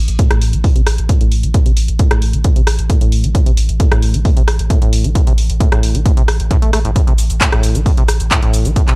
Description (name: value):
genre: driving peak-time techno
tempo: 133 BPM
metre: 4/4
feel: straight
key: A minor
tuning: A4 = 441 Hz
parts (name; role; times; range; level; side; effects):
- warm sub bass; bass; 0.0-9.0 s; A1; -16 LUFS; equal; overdrive, sidechain pumping, low-pass filter
- techno drum kit; drums; 0.1-9.0 s; handclaps, hi-hat, rim click, shaker; -20 LUFS; equal; sidechain pumping on hats, sidechain pumping on cymbals, sidechain pumping on perc
- acid bass, saw; riff; 0.2-8.9 s; A2 to A3; -20 LUFS; equal; sidechain pumping, tape echo
- electronic kick drum; drums; 0.2-8.9 s; none; -12 LUFS; equal; none
room: little or no reverb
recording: dry, gritty hardware recording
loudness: -10 LUFS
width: side -31 dB against mid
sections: 0.0-9.0 A section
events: filter sweep on acid bass 0.0-9.0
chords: 0.0 A5